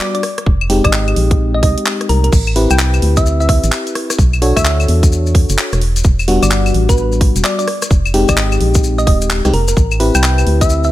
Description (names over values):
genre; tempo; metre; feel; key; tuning
UK garage, two-step garage; 129 BPM; 4/4; swing 63% on 16ths; A dorian; A4 = 437 Hz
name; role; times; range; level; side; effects
thumb-piano-like synth pluck; melody; 0.0-10.9 s; Bb4 to G5; -21 LUFS; equal; chorus, ping-pong delay
FM electric piano; stabs; 0.0-10.9 s; G3 to C#5; -18 LUFS; left 2 dB; chorus, ping-pong delay
garage drum kit; drums; 0.0-10.7 s; claves, crash cymbal, handclaps, hi-hat, rim click; -20 LUFS; left 1 dB; small room ambience
organ-like FM bass; bass; 0.5-10.9 s; Eb1 to E2; -14 LUFS; equal; none
electronic kick drum; drums; 0.5-10.7 s; none; -13 LUFS; equal; small room ambience
maracas; percussion; 2.3-10.9 s; none; -25 LUFS; left 5 dB; none
room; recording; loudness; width
digital ambience; none; -11 LUFS; side -15 dB against mid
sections
0.0-10.9 A section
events
none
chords
0.2 Fm7; 2.3 Am7; 4.2 Bm7; 5.8 Em7; 7.7 Fm7; 9.8 Am7